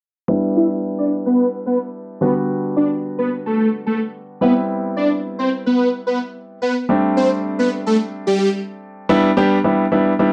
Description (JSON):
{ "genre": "pop", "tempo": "109 BPM", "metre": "4/4", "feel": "straight", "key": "E minor", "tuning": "A4 = 440 Hz", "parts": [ { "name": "clear baby grand piano", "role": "accompaniment", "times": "0.3-10.3 s", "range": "D3 to G4", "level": "-21 LUFS", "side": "equal", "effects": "low-pass filter" }, { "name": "supersaw chords", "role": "melody", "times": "0.6-8.5 s", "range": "G3 to E5", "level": "-20 LUFS", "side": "equal", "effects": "low-pass filter, slapback echo" } ], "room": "light reverb", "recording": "dry, close 1970s-style studio recording", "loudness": "-19 LUFS", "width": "mono", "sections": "0.3-9.1 A section; 9.1-10.3 B section", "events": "filter sweep 0.3-9.1", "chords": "0.3 Em7; 2.2 Gmaj7/D; 4.4 Cmaj7; 6.9 D7sus4; 9.1 Em7" }